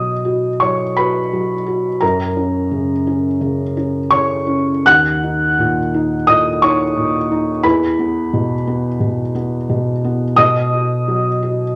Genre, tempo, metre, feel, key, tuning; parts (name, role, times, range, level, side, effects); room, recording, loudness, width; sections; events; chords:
neoclassical minimalist piano; 86 BPM; 4/4; rubato; B major; A4 = 439 Hz
felt-muted upright piano; solo; 0.0-11.8 s; D#2 to F#6; -17 LUFS; equal
wet large studio reverb, RT60 0.9 s; -17 LUFS; mono
0.0-11.8 A section
0.0 B; 2.0 F#; 4.9 D#m; 7.6 E5; 10.4 B